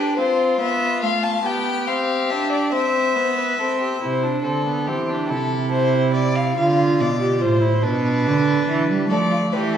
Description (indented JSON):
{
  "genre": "classical, baroque-style fugue for string quartet",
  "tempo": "47 BPM (dotted quarters)",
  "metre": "6/8",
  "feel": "straight",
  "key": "C major",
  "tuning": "A4 = 438 Hz",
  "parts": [
    { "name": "warm violin", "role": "melody", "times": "0.0-4.0, 9.1-9.8 s", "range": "B4 to A5", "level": "-22 LUFS", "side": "left 4 dB", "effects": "none" },
    { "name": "warm violin", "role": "second line", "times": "0.0-9.8 s", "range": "F4 to F5", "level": "-24 LUFS", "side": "left 3 dB", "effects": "none" },
    { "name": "warm viola", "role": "accompaniment", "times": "0.0-9.8 s", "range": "A3 to G4", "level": "-22 LUFS", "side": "right 2 dB", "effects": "none" },
    { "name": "rich cello", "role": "bass", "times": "4.0-9.8 s", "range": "A2 to G3", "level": "-21 LUFS", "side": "right 3 dB", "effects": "none" }
  ],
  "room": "wet recital hall reverb, RT60 1.6 s",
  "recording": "heard from further back in the room",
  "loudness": "-18 LUFS",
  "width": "side -9 dB against mid",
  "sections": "0.0-4.0 A section; 4.0-9.8 B section",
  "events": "none",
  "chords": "0.2 Fmaj7#11; 1.4 G7/B; 2.7 C; 5.3 Am/C; 6.6 Dm; 7.8 Bmadd11; 9.1 Dm",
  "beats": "0.18 | 1.45 2.72 | 4.01 5.29 | 6.56 7.83 | 9.10"
}